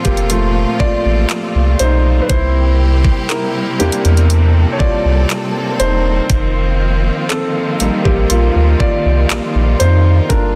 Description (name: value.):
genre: contemporary R&B.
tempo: 60 BPM.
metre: 4/4.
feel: straight.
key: unclear.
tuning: A4 = 440 Hz.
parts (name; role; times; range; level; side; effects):
warm grand piano; accompaniment; 0.0-10.6 s; F3 to D5; -20 LUFS; equal; none.
clear studio string section; sustained chords; 0.0-10.6 s; Bb2 to A4; -23 LUFS; equal; none.
trap drum kit; drums; 0.0-10.5 s; handclaps, hi-hat, kick drum; -20 LUFS; equal; none.
warm sub bass; bass; 0.1-10.6 s; E1 to F2; -15 LUFS; equal; none.
room: studio reverb.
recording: dense, heavily limited modern master.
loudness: -14 LUFS.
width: mono.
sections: 0.0-10.6 A section.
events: grand piano solo 0.0-10.6.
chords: 0.0 Dm7; 2.3 C7; 6.3 F7sus4.